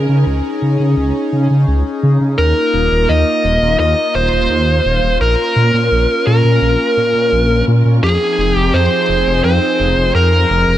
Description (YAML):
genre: synthwave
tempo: 85 BPM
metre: 4/4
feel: straight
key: unclear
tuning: A4 = 440 Hz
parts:
  - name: chorused pulse-width pad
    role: sustained chords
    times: 0.0-10.8 s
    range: F3 to G5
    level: -19 LUFS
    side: equal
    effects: shimmer reverb
  - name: dark detuned saw bass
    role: bass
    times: 0.0-10.8 s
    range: Eb1 to Db3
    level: -14 LUFS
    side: equal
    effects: none
  - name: bluesy overdriven lead guitar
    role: melody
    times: 2.4-10.8 s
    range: Ab4 to Eb5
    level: -15 LUFS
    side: equal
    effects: distortion, shimmer reverb, digital delay
room: light reverb, digital ambience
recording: none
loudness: -11 LUFS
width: side -12 dB against mid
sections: 0.0-10.8 A section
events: none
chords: 0.0 Dbsus2; 2.4 Ebsus2; 5.2 Bbm; 8.0 Fm7